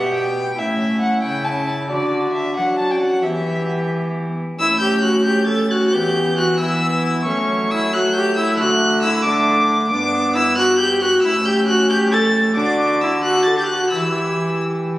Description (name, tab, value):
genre	classical, renaissance-style consort dance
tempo	90 BPM (dotted quarters)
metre	6/8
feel	straight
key	unclear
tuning	A4 = 440 Hz
part	warm violin	melody	0.0-14.6 s	D5 to A6	-20 LUFS	left 1 dB	none
part	warm viola	second line	0.0-14.6 s	C#4 to A4	-20 LUFS	equal	none
part	warm trombone	accompaniment	0.0-15.0 s	A3 to G4	-24 LUFS	equal	none
part	rich cello	bass	0.0-15.0 s	G2 to F#3	-23 LUFS	equal	none
room	wet concert hall reverb, RT60 1.8 s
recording	recorded on a phone in the room, studio reverb, compression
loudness	-15 LUFS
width	side -16 dB against mid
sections	0.0-4.6 A section; 4.6-15.0 A section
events	none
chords	0.0 G; 0.6 A; 1.9 D; 3.2 Em; 4.6 A; 5.9 Em; 7.3 F#m; 8.6 D; 9.9 G; 11.2 A; 12.6 D; 13.9 Em